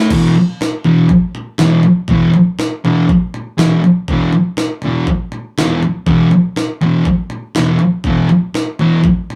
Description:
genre	garage rock duo or trio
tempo	121 BPM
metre	4/4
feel	straight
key	unclear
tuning	A4 = 441 Hz
part	thick fuzz guitar	riff	0.0-9.0 s	E2 to A4	-13 LUFS	equal	distortion
part	jungle sampler-style drum kit	drums	0.1-9.4 s	crash cymbal, kick drum, snare drum, toms	-22 LUFS	equal	none
room	moderate studio reverb, RT60 0.6 s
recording	rough rehearsal-room recording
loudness	-14 LUFS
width	mono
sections	0.1-9.4 A section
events	none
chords	0.1 E5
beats	| 0.10 0.60 1.10 1.60 | 2.10 2.59 3.09 3.59 | 4.08 4.58 5.08 5.57 | 6.07 6.57 7.06 7.56 | 8.06 8.56 9.06

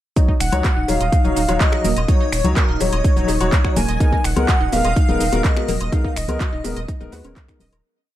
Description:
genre	progressive house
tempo	125 BPM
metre	4/4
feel	straight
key	Eb minor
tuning	A4 = 440 Hz
part	wide unison pluck	arpeggios	0.2-7.8 s	Bb3 to Eb6	-27 LUFS	right 1 dB	sidechain pumping, digital delay
part	dark grand piano	stabs	0.2-7.6 s	Gb3 to Db5	-25 LUFS	left 4 dB	sidechain pumping, digital delay
part	deep house drum kit	drums	0.2-7.8 s	finger snaps, handclaps, hi-hat, shaker	-26 LUFS	right 1 dB	overdrive, studio reverb
part	electronic kick drum	drums	0.2-7.6 s	none	-17 LUFS	equal	studio reverb
part	warm velvety synth lead	melody	0.4-7.1 s	Bb4 to Ab5	-26 LUFS	equal	chorus, cassette tape, digital delay
part	airy dreamy lead	second line	0.4-7.1 s	Bb4 to Ab5	-29 LUFS	right 1 dB	chorus, sidechain pumping, digital delay
part	round analog bass	bass	0.4-7.8 s	Eb1 to Eb2	-23 LUFS	equal	sidechain pumping
part	woodblock, congas and cowbell	percussion	0.5-7.8 s	none	-28 LUFS	left 4 dB	sidechain pumping on perc
room	little or no reverb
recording	dark, warm production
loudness	-16 LUFS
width	side -13 dB against mid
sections	0.2-7.8 drop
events	drop 0.2-7.8; fade-out 5.3-7.8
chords	0.2 Ebm7; 4.0 Abmadd9/Eb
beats	| 0.17 0.65 1.12 1.60 | 2.08 2.56 3.04 3.52 | 4.00 4.49 4.96 5.45 | 5.92 6.41 6.88 7.37

